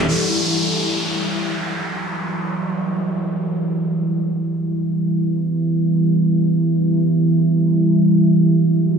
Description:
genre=house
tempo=free time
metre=none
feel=none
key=E minor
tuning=A4 = 440 Hz
part: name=deep dark ambient pad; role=sustained chords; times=0.0-9.0 s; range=G3 to B4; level=-17 LUFS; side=right 1 dB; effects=chorus, built-in reverb
part: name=downlifter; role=sound effects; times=0.1-3.9 s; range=none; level=-24 LUFS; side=equal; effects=none
room=wet lush hall reverb, RT60 2.2 s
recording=dreamy mix soaked in reverb, studio reverb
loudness=-16 LUFS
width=side -6 dB against mid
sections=0.1-9.0 A section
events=filter sweep on ambient pad 0.1-9.0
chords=0.1 Emadd9

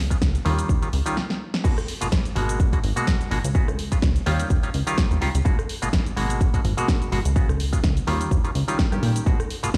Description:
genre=filtered disco house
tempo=126 BPM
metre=4/4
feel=swing 55% on 16ths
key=G# dorian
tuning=A4 = 440 Hz
part: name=plucky analog bass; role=bass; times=0.0-9.8 s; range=G#1 to A#2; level=-26 LUFS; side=equal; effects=sidechain pumping, low-pass filter
part: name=clav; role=accompaniment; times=0.1-9.7 s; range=B2 to G4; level=-30 LUFS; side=equal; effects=phaser, sidechain pumping, low-pass filter
part: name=electronic kick drum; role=drums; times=0.1-9.8 s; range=none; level=-24 LUFS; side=equal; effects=small room ambience
part: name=house drum kit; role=drums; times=0.1-9.8 s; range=crash cymbal, hi-hat, rim click, shaker, snare drum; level=-32 LUFS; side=equal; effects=small room ambience
room=light reverb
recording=played on a big sound system in a bare room, stone room reverb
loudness=-22 LUFS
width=mono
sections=0.0-1.6 A section; 1.6-9.8 B section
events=filter sweep 0.0-1.6; drum fill 1.2-1.6; stop 1.2-1.6; drop 1.6-9.8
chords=0.5 D#9; 1.6 G#m9; 3.6 C#7sus4; 4.3 D#9; 5.5 G#m9; 7.4 C#7sus4; 8.1 D#9; 9.3 G#m9

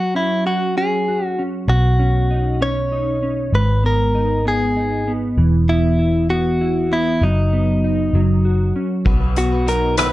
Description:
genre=six-eight pop ballad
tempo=65 BPM (dotted quarters)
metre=6/8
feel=straight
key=B major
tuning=A4 = 440 Hz
part: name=direct-recorded clean electric guitar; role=melody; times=0.0-10.1 s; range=D#4 to C#5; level=-20 LUFS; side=equal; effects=plate reverb
part: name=mellow electric guitar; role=accompaniment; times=0.0-10.1 s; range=G#2 to F#4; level=-20 LUFS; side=right 1 dB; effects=analog chorus
part: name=vintage muted fingered electric bass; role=bass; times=1.7-10.1 s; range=E1 to B1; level=-19 LUFS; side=equal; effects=none
part: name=direct-recorded clean electric guitar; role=arpeggios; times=9.1-10.1 s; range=B2 to B4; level=-28 LUFS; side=left 4 dB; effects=vibrato effect, plate reverb
part: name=soft-mallet drum kit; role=drums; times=9.1-10.1 s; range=crash cymbal, hi-hat, kick drum, rim click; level=-20 LUFS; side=equal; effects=vintage 12-bit sampler grit
room=moderate small room reverb, RT60 0.5 s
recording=dark, warm production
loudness=-15 LUFS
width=side -16 dB against mid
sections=0.0-9.1 A section; 9.1-10.1 B section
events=none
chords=0.0 F#5; 1.7 Badd9; 3.5 G#m; 5.4 E5; 7.2 B/F#; 8.1 F#5; 9.1 B

